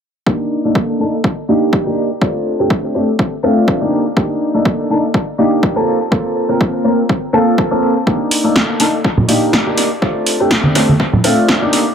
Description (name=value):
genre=filtered disco house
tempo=123 BPM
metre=4/4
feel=swing 55% on 16ths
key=unclear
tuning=A4 = 440 Hz
part: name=warm baby grand piano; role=accompaniment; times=0.3-11.8 s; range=A3 to Bb4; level=-14 LUFS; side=equal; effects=phaser, sidechain pumping, low-pass filter, tape echo
part: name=electronic kick drum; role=drums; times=0.3-11.6 s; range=none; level=-16 LUFS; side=equal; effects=high-pass filter on kick, high-pass filter on room
part: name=egg shaker and congas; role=percussion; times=8.1-11.9 s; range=none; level=-14 LUFS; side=right 1 dB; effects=sidechain pumping on perc, low-pass filter on perc
part: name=punchy analog drum machine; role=drums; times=8.3-11.8 s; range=hi-hat, snare drum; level=-16 LUFS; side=equal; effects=sidechain pumping on hats, tape echo
room=moderate spring reverb, RT60 1.9 s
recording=echo-heavy mix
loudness=-12 LUFS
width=side -7 dB against mid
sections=0.3-11.9 A section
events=filter sweep 0.3-11.9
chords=0.3 Ebmaj7#11/Bb; 2.2 Bbmaj9 (rootless); 3.9 Cm7 (rootless); 5.9 Fadd11/Bb; 8.1 Ebmaj7#11/Bb; 10.0 Bbmaj9 (rootless)